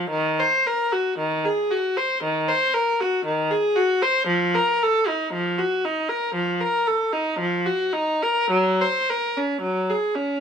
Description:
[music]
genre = classical, baroque-style suite movement for unaccompanied viola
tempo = 51-59 BPM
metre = 4/4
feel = rubato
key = unclear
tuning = A4 = 444 Hz
[part]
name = rich viola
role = solo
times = 0.0-10.4 s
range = Eb3 to C5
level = -20 LUFS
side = equal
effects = none
[sound]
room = light reverb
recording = minimal, uncompressed stereo recording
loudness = -20 LUFS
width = side -7 dB against mid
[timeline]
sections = 0.0-10.4 A section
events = none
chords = none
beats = | 0.08 1.17 2.21 3.24 | 4.27 5.31 6.35 7.39 | 8.51 9.61

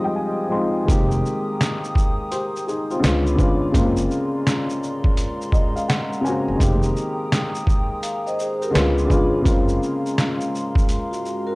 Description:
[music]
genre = lo-fi hip hop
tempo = 84 BPM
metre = 4/4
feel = swing 65% on 16ths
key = unclear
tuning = A4 = 440 Hz
[part]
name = dark upright piano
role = accompaniment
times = 0.0-11.6 s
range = Db3 to C6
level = -22 LUFS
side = left 1 dB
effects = cassette tape, plate reverb
[part]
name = dark analog pad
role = sustained chords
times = 0.0-11.6 s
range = Ab3 to Eb6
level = -31 LUFS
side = equal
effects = chorus, plate reverb
[part]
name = upright bass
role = bass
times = 0.9-9.8 s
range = F1 to Db2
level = -23 LUFS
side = equal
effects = transformer saturation
[part]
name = trip hop sampler-style drum kit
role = drums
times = 0.9-11.5 s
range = hi-hat, kick drum, shaker, snare drum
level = -20 LUFS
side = equal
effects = none
[part]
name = vibraphone with soft mallets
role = second line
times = 8.0-11.6 s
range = F4 to F5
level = -26 LUFS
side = equal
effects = tape echo, plate reverb
[sound]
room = light reverb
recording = dry, gritty hardware recording, cassette tape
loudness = -18 LUFS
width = side -24 dB against mid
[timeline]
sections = 0.9-11.6 A section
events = upright piano fill 0.0-0.9, 5.2-6.6; drums muted 0.2-0.9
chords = 0.0 Fm9; 0.9 Fm11; 3.0 Db7b9; 3.7 Gbmaj9#11; 6.6 Fm11; 8.7 Db7b9; 9.5 Gbmaj9#11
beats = 0.17 | 0.89 1.60 2.31 3.03 | 3.74 4.46 5.17 5.88 | 6.60 7.31 8.03 8.74 | 9.46 10.17 10.88

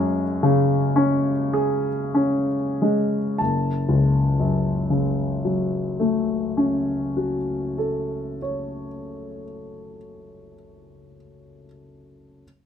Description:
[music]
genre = classical, romantic nocturne for solo piano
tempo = 35 BPM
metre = 4/4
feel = rubato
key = F# minor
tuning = A4 = 441 Hz
[part]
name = clear grand piano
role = solo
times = 0.0-12.5 s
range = F#1 to A5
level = -20 LUFS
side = left 1 dB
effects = none
[sound]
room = light reverb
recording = minimal, uncompressed stereo recording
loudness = -20 LUFS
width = side -8 dB against mid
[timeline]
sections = 0.0-3.4 A section; 3.4-10.2 B section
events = slowing down 0.0-3.4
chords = 0.0 C#7/F#; 3.4 F#m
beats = 1.52 | 3.38 5.07 6.77 8.48

